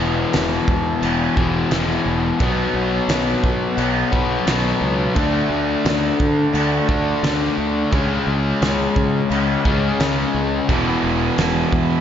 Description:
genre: quiet-loud alternative rock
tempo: 87 BPM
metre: 4/4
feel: straight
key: E major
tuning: A4 = 440 Hz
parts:
  - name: biting overdriven guitar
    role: riff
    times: 0.0-12.0 s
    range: E2 to D4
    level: -21 LUFS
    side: left 5 dB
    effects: none
  - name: raw garage guitar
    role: riff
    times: 0.0-12.0 s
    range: E2 to D4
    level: -22 LUFS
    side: right 2 dB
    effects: overdrive
  - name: growling fingered electric bass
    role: bass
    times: 0.0-12.0 s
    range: E1 to D3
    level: -24 LUFS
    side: right 1 dB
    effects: overdrive
  - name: loose indie drum kit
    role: drums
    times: 0.3-11.9 s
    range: crash cymbal, kick drum, snare drum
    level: -23 LUFS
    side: right 1 dB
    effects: none
  - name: distorted electric guitar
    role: riff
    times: 10.7-12.0 s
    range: E2 to E3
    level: -23 LUFS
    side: right 13 dB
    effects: overdrive
room: moderate lush hall reverb, RT60 2.3 s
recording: big arena sound, nothing above 7.5 kHz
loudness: -16 LUFS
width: side -9 dB against mid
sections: 0.0-12.0 A section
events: none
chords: 0.0 E5; 2.4 B5; 5.2 D5; 7.9 C#5; 10.7 E5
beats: 0.34 1.03 1.72 | 2.41 3.10 3.79 4.48 | 5.17 5.86 6.55 7.24 | 7.93 8.62 9.31 10.00 | 10.69 11.38

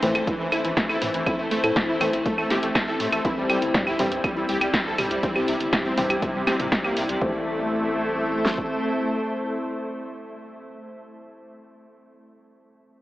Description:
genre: melodic techno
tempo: 121 BPM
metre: 4/4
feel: straight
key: A minor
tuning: A4 = 440 Hz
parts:
  - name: soft supersaw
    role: melody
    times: 0.0-10.5 s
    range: C3 to A4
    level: -28 LUFS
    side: equal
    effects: sidechain pumping, analog delay
  - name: evolving wavetable pad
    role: sustained chords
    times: 0.0-10.5 s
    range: G3 to D5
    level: -29 LUFS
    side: left 1 dB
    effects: phaser, built-in reverb, sidechain pumping
  - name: wide unison pluck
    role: arpeggios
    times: 0.0-7.4 s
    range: G3 to A4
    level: -30 LUFS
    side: equal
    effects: sidechain pumping, diffuse ambient delay
  - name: filtered dub chord stab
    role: stabs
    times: 0.0-10.5 s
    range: G2 to C4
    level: -32 LUFS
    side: equal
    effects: none
  - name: round analog bass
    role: bass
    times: 0.0-8.7 s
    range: G1 to A2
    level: -38 LUFS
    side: equal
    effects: sidechain pumping
  - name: punchy analog drum machine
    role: drums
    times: 0.0-7.2 s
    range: claves, hi-hat, snare drum, toms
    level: -26 LUFS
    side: equal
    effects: none
  - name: deep house drum kit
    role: drums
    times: 0.3-8.7 s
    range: kick drum, snare drum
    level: -28 LUFS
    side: equal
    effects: none
room: wet cathedral reverb, RT60 6.3 s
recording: dreamy mix soaked in reverb, AM radio sound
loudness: -21 LUFS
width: side -16 dB against mid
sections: 0.0-7.2 A section; 7.2-11.2 B section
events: drop 0.0-7.2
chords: 0.0 Am; 3.2 C; 7.2 Am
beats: 0.27 0.77 | 1.26 1.76 2.26 2.75 | 3.25 3.74 4.24 4.74 | 5.23 5.73 6.22 6.72 | 7.21 7.71 8.21 8.70 | 9.20 9.69 10.19

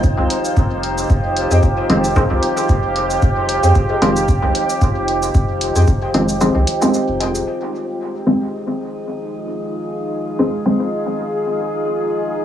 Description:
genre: dub techno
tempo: 113 BPM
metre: 4/4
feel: swing 55% on 16ths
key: F minor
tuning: A4 = 441 Hz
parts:
  - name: deep dark ambient pad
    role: sustained chords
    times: 0.0-12.4 s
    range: Eb4 to Ab4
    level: -20 LUFS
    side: right 1 dB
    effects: chorus, built-in reverb, sidechain pumping, cassette tape
  - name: filtered dub chord stab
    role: stabs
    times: 0.0-11.0 s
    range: Eb3 to C4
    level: -20 LUFS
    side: equal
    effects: chorus, phaser, sidechain pumping, cassette tape, dub echo
  - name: soft dub sub bass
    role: bass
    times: 0.0-7.4 s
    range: F1 to F2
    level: -20 LUFS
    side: equal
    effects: sidechain pumping
  - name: electronic kick drum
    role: drums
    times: 0.0-6.0 s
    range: none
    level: -16 LUFS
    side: equal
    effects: cassette tape
  - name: electronic shaker and hi-hat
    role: drums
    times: 0.0-7.4 s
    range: none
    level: -26 LUFS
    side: equal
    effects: overdrive, cassette tape
  - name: metallic inharmonic drone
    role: texture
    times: 0.0-12.4 s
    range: Ab3 to C4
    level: -25 LUFS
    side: left 1 dB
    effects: chorus, built-in reverb, sidechain pumping, cassette tape
  - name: warbly dusty pluck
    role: riff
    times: 1.5-7.3 s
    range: Ab4 to G5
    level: -28 LUFS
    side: left 8 dB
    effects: chorus, phaser, vintage 12-bit sampler grit, sidechain pumping, cassette tape, dub echo
room: moderate small room reverb, RT60 0.5 s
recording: home recording on cassette, small room ambience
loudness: -15 LUFS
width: side -10 dB against mid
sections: 0.0-7.5 A section; 7.5-12.4 B section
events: kick drops out 6.4-7.5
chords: 0.0 Fm7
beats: 0.04 0.57 | 1.10 1.63 2.16 2.69 | 3.22 3.75 4.29 4.82 | 5.35 5.88 6.41 6.94 | 7.47 8.00 8.53 9.06 | 9.60 10.13 10.66 11.19 | 11.72 12.25

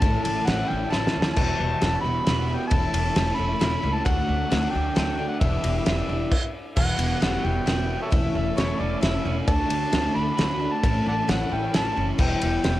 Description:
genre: folk rock and heartland rock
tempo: 133 BPM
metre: 3/4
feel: straight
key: E dorian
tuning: A4 = 440 Hz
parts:
  - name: overdriven harmonica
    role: melody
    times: 0.0-12.8 s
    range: A4 to B5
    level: -28 LUFS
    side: left 1 dB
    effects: cassette tape
  - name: picked twelve-string acoustic guitar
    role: accompaniment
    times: 0.0-12.8 s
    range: E2 to F#4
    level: -32 LUFS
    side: left 6 dB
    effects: cassette tape
  - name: rich studio string section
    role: sustained chords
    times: 0.0-12.8 s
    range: F#3 to A4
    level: -36 LUFS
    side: equal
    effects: none
  - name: electric guitar at the edge of break-up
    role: riff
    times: 0.0-12.8 s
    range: E2 to F#4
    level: -31 LUFS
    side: right 6 dB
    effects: cassette tape
  - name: upright bass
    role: bass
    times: 0.0-12.8 s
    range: E1 to D2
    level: -28 LUFS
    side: equal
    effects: none
  - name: loose indie drum kit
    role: drums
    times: 0.0-12.7 s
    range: crash cymbal, kick drum, ride cymbal, snare drum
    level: -25 LUFS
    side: equal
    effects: cassette tape
room: light reverb, studio ambience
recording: home recording on cassette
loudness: -21 LUFS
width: side -15 dB against mid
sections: 0.0-6.8 A section; 6.8-12.8 A section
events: drum fill 0.9-1.4; stop 6.3-6.8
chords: 0.0 A; 1.4 Emadd9; 2.7 A/E; 4.1 D; 5.4 Em7; 6.8 Emadd9; 8.1 A/E; 9.5 D; 10.8 A; 12.2 Emadd9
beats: | 0.02 0.47 0.92 | 1.37 1.82 2.27 | 2.72 3.17 3.62 | 4.07 4.52 4.97 | 5.42 5.87 6.32 | 6.77 7.22 7.67 | 8.12 8.57 9.02 | 9.47 9.93 10.38 | 10.83 11.28 11.73 | 12.19 12.64

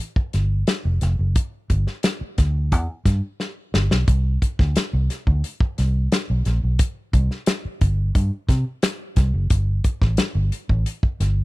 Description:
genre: funk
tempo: 88 BPM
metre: 4/4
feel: straight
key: unclear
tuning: A4 = 439 Hz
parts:
  - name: warm soul drum kit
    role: drums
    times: 0.2-11.4 s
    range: hi-hat, kick drum, snare drum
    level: -20 LUFS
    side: equal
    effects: none
  - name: vintage muted fingered electric bass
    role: bass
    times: 0.3-11.4 s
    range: F1 to C3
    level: -20 LUFS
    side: equal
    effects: none
room: little or no reverb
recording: dry, close 1970s-style studio recording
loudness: -19 LUFS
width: side -20 dB against mid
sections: 0.0-11.4 A section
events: drum fill 3.4-4.1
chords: none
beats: 0.00 0.68 | 1.36 2.04 2.72 3.40 | 4.08 4.76 5.44 6.12 | 6.80 7.47 8.15 8.83 | 9.51 10.19 10.86

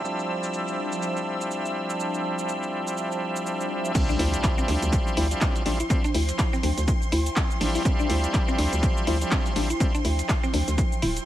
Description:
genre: deep house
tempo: 123 BPM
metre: 4/4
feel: swing 58% on 16ths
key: D minor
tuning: A4 = 444 Hz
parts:
  - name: airy breathy pad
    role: sustained chords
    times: 0.0-11.3 s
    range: F3 to A5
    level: -34 LUFS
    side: right 2 dB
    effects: chorus, phaser, sidechain pumping
  - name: bright tonewheel organ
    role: stabs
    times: 0.0-9.9 s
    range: F3 to E4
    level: -29 LUFS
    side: equal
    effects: overdrive, chorus vibrato, sidechain pumping, low-pass filter, tape echo
  - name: punchy analog drum machine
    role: drums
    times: 0.0-11.2 s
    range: crash cymbal, handclaps, hi-hat, shaker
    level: -32 LUFS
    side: equal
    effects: none
  - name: soft string machine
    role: texture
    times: 0.0-11.3 s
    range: C6 to E6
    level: -36 LUFS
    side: equal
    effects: phaser, ensemble chorus
  - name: mallet-like synth pluck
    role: arpeggios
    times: 4.0-11.1 s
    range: C4 to E4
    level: -30 LUFS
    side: left 2 dB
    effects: chorus, cassette tape, sidechain pumping, dub echo
  - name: dusty soul sampler-style drum kit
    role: drums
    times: 4.0-11.2 s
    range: hi-hat, shaker, snare drum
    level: -41 LUFS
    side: right 2 dB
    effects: none
  - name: electronic kick drum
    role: drums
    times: 4.0-10.9 s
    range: none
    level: -24 LUFS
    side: equal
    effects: overdrive
  - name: impact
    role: sound effects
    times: 4.1-5.9 s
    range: none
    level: -36 LUFS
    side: equal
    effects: none
  - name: hollow knocking FM bass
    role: bass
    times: 4.2-11.2 s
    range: D1 to D2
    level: -25 LUFS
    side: equal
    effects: sidechain pumping
room: light reverb, digital ambience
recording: vinyl crackle, low-pass filter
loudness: -22 LUFS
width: side -13 dB against mid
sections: 0.0-4.0 A section; 4.0-11.3 B section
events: filter sweep on analog synth pad 0.0-4.0; drop 4.0-11.3; impact 4.0-5.9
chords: 0.0 Dm11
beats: | 0.05 0.54 1.02 1.51 | 2.00 2.49 2.98 3.46 | 3.95 4.44 4.93 5.41 | 5.90 6.39 6.88 7.37 | 7.85 8.34 8.83 9.32 | 9.80 10.29 10.78

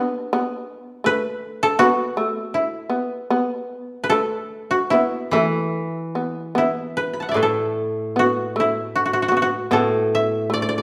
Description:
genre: japanese traditional, Japanese chamber music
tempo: 72-83 BPM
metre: 4/4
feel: rubato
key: E suspended pentatonic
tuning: A4 = 440 Hz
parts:
  - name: koto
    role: melody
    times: 0.0-10.8 s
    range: D4 to B5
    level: -23 LUFS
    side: equal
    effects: none
  - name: shamisen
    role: second line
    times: 0.0-10.8 s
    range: A3 to B3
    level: -26 LUFS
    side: equal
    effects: none
  - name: koto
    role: accompaniment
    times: 5.3-10.8 s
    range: A2 to E3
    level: -27 LUFS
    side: equal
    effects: none
room: wet recital hall reverb, RT60 1.5 s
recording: none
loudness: -21 LUFS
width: mono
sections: 0.0-10.8 A section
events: none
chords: none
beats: | 0.33 1.06 1.80 2.54 | 3.30 4.10 4.91 5.73 | 6.55 7.35 8.15 8.94 | 9.72 10.49

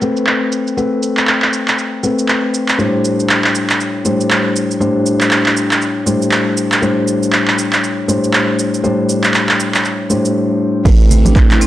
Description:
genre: afro house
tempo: 119 BPM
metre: 4/4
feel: swing 60% on 16ths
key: unclear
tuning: A4 = 440 Hz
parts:
  - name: felt-muted upright piano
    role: stabs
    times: 0.0-11.7 s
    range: A2 to C5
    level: -15 LUFS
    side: left 2 dB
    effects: sidechain pumping, tape echo
  - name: deep house drum kit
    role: drums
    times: 0.0-11.7 s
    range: crash cymbal, handclaps, hi-hat, shaker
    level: -16 LUFS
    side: right 1 dB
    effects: low-pass filter on perc, low-pass filter on snare, low-pass filter on hats, low-pass filter on cymbals, low-pass filter on room
  - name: marimba with medium mallets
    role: arpeggios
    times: 10.9-11.7 s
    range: A3 to E4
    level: -17 LUFS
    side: right 1 dB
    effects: sidechain pumping, tape echo
  - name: woody FM bass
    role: bass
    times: 10.9-11.7 s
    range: A1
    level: -12 LUFS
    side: right 1 dB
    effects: sidechain pumping
  - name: electronic kick drum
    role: drums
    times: 10.9-11.5 s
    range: none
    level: -10 LUFS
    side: right 1 dB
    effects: none
  - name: congas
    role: percussion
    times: 10.9-11.6 s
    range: none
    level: -20 LUFS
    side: right 3 dB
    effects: none
room: moderate lush hall reverb, RT60 1.9 s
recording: dry, gritty hardware recording, transformer saturation, cassette tape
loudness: -12 LUFS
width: side -13 dB against mid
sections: 0.0-10.9 A section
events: none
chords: 0.0 Amadd9; 2.8 Gsus4/A; 10.9 Amadd9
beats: 0.27 | 0.77 1.27 1.78 2.28 | 2.79 3.29 3.80 4.30 | 4.80 5.31 5.81 6.32 | 6.82 7.33 7.83 8.33 | 8.84 9.34 9.85 10.35 | 10.86 11.36

